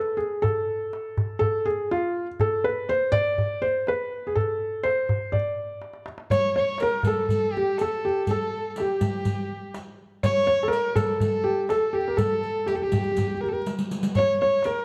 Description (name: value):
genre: Arabic maqam ensemble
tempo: 123 BPM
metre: 4/4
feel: straight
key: unclear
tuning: A4 = 440 Hz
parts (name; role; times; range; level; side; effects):
- felt-muted upright piano; melody; 0.0-14.8 s; F4 to D5; -26 LUFS; equal; none
- darbuka; percussion; 0.2-14.7 s; none; -31 LUFS; equal; none
- rich violin; second line; 6.3-14.8 s; G4 to C#5; -32 LUFS; equal; none
- riq; percussion; 6.3-14.8 s; none; -34 LUFS; equal; none
room: moderate recital hall reverb, RT60 1.5 s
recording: dark, warm production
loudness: -25 LUFS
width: mono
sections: 0.0-6.3 A section; 6.3-14.8 B section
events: drum fill 5.8-6.3, 13.7-14.2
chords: none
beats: | 0.45 0.94 1.43 1.92 | 2.41 2.90 3.39 3.88 | 4.37 4.86 5.34 5.83 | 6.32 6.81 7.30 7.79 | 8.28 8.77 9.26 9.75 | 10.24 10.73 11.22 11.71 | 12.20 12.69 13.18 13.67 | 14.16 14.64